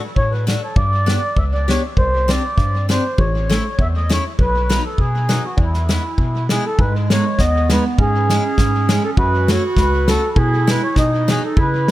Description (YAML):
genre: alpine folk, alpine dance band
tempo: 100 BPM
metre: 2/4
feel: straight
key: E major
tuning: A4 = 437 Hz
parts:
  - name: mellow accordion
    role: melody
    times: 0.2-11.9 s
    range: E4 to E5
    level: -21 LUFS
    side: equal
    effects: dub echo
  - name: bell-like tine electric piano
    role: bass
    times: 0.2-11.9 s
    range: A1 to C#3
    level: -20 LUFS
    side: equal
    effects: phaser
  - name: natural country drum kit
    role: drums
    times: 0.2-11.9 s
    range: kick drum, snare drum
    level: -19 LUFS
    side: equal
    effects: none
  - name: picked steel-string acoustic guitar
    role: accompaniment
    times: 0.5-11.9 s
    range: F#3 to G4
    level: -25 LUFS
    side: left 2 dB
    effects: dub echo
  - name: clear clarinet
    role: second line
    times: 6.8-11.9 s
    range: G#3 to F#4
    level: -22 LUFS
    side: right 4 dB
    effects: dub echo
room: light reverb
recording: echo-heavy mix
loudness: -15 LUFS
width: side -15 dB against mid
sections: 0.0-6.8 A section; 6.8-11.9 B section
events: none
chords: 0.0 D/A; 0.8 G; 2.0 Csus2; 3.2 A; 4.4 B; 5.6 E; 6.8 G#m; 8.0 C#m/G#; 9.2 F#m; 10.4 E/B; 11.0 B